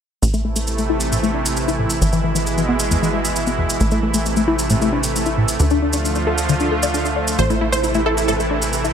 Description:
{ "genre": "uplifting trance", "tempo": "134 BPM", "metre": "4/4", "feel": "straight", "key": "A harmonic minor", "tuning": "A4 = 440 Hz", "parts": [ { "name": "supersaw pad", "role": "sustained chords", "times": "0.2-8.9 s", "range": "B2 to F4", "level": "-22 LUFS", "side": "right 2 dB", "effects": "none" }, { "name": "tight sequenced synth", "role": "arpeggios", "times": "0.2-8.9 s", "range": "E2 to D5", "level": "-21 LUFS", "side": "left 3 dB", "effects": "chorus, phaser, ping-pong delay" }, { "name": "plucky analog bass", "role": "bass", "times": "0.2-8.9 s", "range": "G#1 to D2", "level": "-23 LUFS", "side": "equal", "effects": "none" }, { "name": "cabasa", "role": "percussion", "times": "0.2-8.9 s", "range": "none", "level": "-25 LUFS", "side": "right 2 dB", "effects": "none" }, { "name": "wide unison pluck", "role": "melody", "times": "7.4-8.9 s", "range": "E4 to C5", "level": "-20 LUFS", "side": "right 2 dB", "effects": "ping-pong delay" } ], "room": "light reverb, digital ambience", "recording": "none", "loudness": "-16 LUFS", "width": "side -8 dB against mid", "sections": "0.2-8.9 A section", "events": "filter sweep on synth arpeggio sound 0.2-8.9", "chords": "0.2 Am; 2.0 E/G#; 3.8 Am; 5.6 Dm; 7.4 Am" }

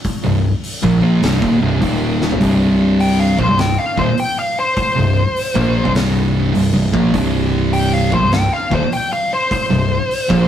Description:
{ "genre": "stoner and doom metal", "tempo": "101 BPM", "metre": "4/4", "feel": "swing 66% on 8ths", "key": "C minor", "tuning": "A4 = 437 Hz", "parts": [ { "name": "oversized low-tuned drum kit", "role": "drums", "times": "0.0-10.5 s", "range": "hi-hat, kick drum, snare drum, toms", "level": "-23 LUFS", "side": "left 1 dB", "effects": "none" }, { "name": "thick fuzz guitar", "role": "riff", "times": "0.2-10.5 s", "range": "C2 to Bb3", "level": "-20 LUFS", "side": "left 5 dB", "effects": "distortion" }, { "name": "thick fuzz guitar", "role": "riff", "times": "0.2-10.5 s", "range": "C2 to Bb3", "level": "-17 LUFS", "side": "right 3 dB", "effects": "distortion" }, { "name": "growling picked electric bass", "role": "bass", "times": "0.2-10.5 s", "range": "C1 to Bb1", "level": "-21 LUFS", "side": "equal", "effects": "overdrive" }, { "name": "fuzz lead guitar", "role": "melody", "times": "3.0-10.5 s", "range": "C5 to G5", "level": "-18 LUFS", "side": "left 1 dB", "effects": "wah, distortion" } ], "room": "moderate stone room reverb, RT60 1.0 s", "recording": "rough rehearsal-room recording", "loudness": "-13 LUFS", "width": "side -10 dB against mid", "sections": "0.0-2.4 A section; 2.4-10.5 B section", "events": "drum fill 2.1; lead electric guitar solo 2.4-10.5", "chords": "0.0 Cm; 1.8 Eb5; 2.4 C5" }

